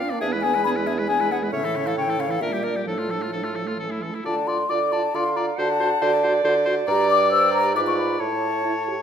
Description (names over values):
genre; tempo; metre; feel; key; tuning
quick classical-period movement for wind quintet; 136 BPM; 3/4; rubato; D minor; A4 = 440 Hz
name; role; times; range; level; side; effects
mellow hollow concert flute; melody; 0.0-9.0 s; A4 to E6; -24 LUFS; left 6 dB; none
bright oboe; second line; 0.0-9.0 s; E4 to F5; -29 LUFS; left 2 dB; none
mellow French horn; accompaniment; 0.0-9.0 s; C#3 to G4; -30 LUFS; right 2 dB; none
mellow clarinet; accompaniment; 0.0-9.0 s; Bb3 to F#5; -27 LUFS; right 6 dB; none
warm bassoon; bass; 0.0-9.0 s; E2 to D3; -26 LUFS; right 3 dB; none
room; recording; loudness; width
wet recital hall reverb, RT60 1.6 s; none; -20 LUFS; side -8 dB against mid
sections
0.0-4.3 A section; 4.3-9.0 B section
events
none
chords
0.2 E7; 1.5 A; 2.4 Gm/Bb; 2.9 Dm/A; 3.8 A; 4.3 Dm; 5.6 D7; 6.9 G5; 7.8 G#dim7; 8.2 A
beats
| 0.22 0.65 1.09 | 1.53 1.97 2.42 | 2.87 3.33 3.79 | 4.25 4.70 5.14 | 5.58 6.02 6.45 | 6.88 7.31 7.75 | 8.20 8.65